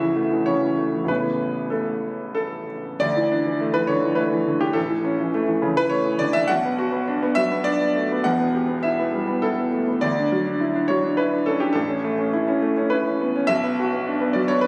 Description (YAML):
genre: neoclassical minimalist piano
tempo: 103 BPM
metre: 3/4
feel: rubato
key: D major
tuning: A4 = 443 Hz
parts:
  - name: clear concert grand piano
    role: solo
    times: 0.0-14.7 s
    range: E1 to F#5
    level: -22 LUFS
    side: equal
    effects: none
room: moderate studio reverb, RT60 0.5 s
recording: recorded on a phone in the room, studio reverb, compression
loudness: -22 LUFS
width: mono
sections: 0.0-3.0 A section; 3.0-14.7 B section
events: none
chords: 0.0 A; 3.0 Dsus2; 4.8 A; 6.5 Bm; 8.2 Em; 10.0 Dadd9; 11.8 A; 13.5 Bm